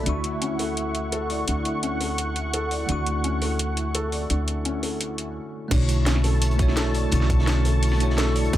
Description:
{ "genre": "liquid drum and bass", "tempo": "170 BPM", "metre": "4/4", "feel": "straight", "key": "D major", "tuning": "A4 = 440 Hz", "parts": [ { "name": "bell-like tine electric piano", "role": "accompaniment", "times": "0.0-8.6 s", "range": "D3 to C#6", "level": "-30 LUFS", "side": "right 1 dB", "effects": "fast stereo tremolo, tape echo" }, { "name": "lush unison pad", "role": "sustained chords", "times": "0.0-8.6 s", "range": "E4 to C#6", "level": "-31 LUFS", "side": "equal", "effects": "chorus, sidechain pumping" }, { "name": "felt-muted upright piano", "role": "arpeggios", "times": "0.0-8.6 s", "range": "C#4 to D5", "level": "-31 LUFS", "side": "left 3 dB", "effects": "dub echo" }, { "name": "upright bass", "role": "bass", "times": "0.0-8.6 s", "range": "B1 to D2", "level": "-24 LUFS", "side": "equal", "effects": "none" }, { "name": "drum and bass drum kit", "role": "drums", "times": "0.1-8.6 s", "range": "crash cymbal, hi-hat, snare drum", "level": "-30 LUFS", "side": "equal", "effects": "none" }, { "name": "crunchy breakbeat drum kit", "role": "drums", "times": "5.7-8.6 s", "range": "hi-hat, snare drum", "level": "-36 LUFS", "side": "equal", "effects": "none" }, { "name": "electronic kick drum", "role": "drums", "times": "5.7-8.6 s", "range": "none", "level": "-22 LUFS", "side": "equal", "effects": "none" } ], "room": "light reverb", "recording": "none", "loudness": "-21 LUFS", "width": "side -13 dB against mid", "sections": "0.0-5.7 A section; 5.7-8.6 B section", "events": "stop 5.4-5.7; drop 5.7-8.6", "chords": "0.1 Dmaj9; 5.7 Bm11" }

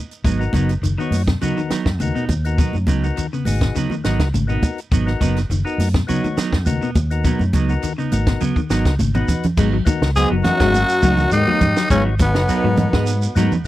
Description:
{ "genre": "afrobeat", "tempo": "103 BPM", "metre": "4/4", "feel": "straight", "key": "G# minor", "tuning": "A4 = 437 Hz", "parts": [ { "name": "compact cocktail drum kit", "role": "drums", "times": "0.1-13.5 s", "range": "crash cymbal, hi-hat, kick drum, snare drum", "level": "-20 LUFS", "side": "equal", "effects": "none" }, { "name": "shekere", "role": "percussion", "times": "0.1-13.7 s", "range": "none", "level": "-30 LUFS", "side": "right 2 dB", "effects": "none" }, { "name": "electric guitar at the edge of break-up", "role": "arpeggios", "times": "0.2-13.6 s", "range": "G#2 to G#3", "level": "-24 LUFS", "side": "left 5 dB", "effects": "none" }, { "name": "fingered electric bass", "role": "bass", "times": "0.2-13.7 s", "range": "F#1 to G#2", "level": "-20 LUFS", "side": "equal", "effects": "none" }, { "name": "clean electric guitar", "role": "stabs", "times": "0.3-13.6 s", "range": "F#3 to D#4", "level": "-24 LUFS", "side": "right 6 dB", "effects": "spring reverb" }, { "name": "percussive tonewheel organ", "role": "accompaniment", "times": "0.4-13.7 s", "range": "B3 to C#5", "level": "-26 LUFS", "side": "left 6 dB", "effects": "none" }, { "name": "congas", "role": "percussion", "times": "0.5-13.7 s", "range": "none", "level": "-24 LUFS", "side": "right 2 dB", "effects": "none" }, { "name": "growling tenor saxophone", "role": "melody", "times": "10.2-13.3 s", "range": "B3 to G#4", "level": "-20 LUFS", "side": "equal", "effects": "tape echo" }, { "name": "bright trombone section", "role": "second line", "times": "10.2-13.3 s", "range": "B1 to G#2", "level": "-26 LUFS", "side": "left 4 dB", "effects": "none" }, { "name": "growling trombone", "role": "second line", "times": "10.2-13.3 s", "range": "B2 to G#3", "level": "-28 LUFS", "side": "right 2 dB", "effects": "none" } ], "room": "little or no reverb", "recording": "dry, close 1970s-style studio recording", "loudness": "-16 LUFS", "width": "side -15 dB against mid", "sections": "0.0-9.6 A section; 9.6-13.7 B section", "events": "drum fill 9.0-9.6", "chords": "0.0 G#m7" }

